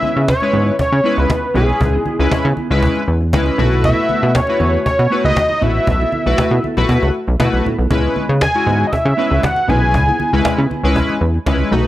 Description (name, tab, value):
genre	early-eighties boogie funk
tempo	118 BPM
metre	4/4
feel	straight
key	C# minor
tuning	A4 = 440 Hz
part	fat analog lead	melody	0.0-10.5 s	G#4 to G#5	-18 LUFS	equal	analog delay
part	chorused polysynth	accompaniment	0.0-11.9 s	G#3 to B4	-19 LUFS	left 2 dB	none
part	mellow electric guitar	riff	0.0-11.9 s	A3 to B4	-25 LUFS	right 4 dB	wide subtle chorus
part	cajon	drums	0.0-11.8 s	none	-21 LUFS	equal	none
part	congas	percussion	0.0-11.8 s	none	-26 LUFS	left 1 dB	none
part	plucky analog bass	bass	0.2-11.9 s	A1 to C#3	-16 LUFS	equal	none
room	light reverb, small room ambience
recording	none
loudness	-13 LUFS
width	side -14 dB against mid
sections	0.0-11.9 A section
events	none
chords	0.0 C#m7; 3.6 B7sus4; 7.9 C#m7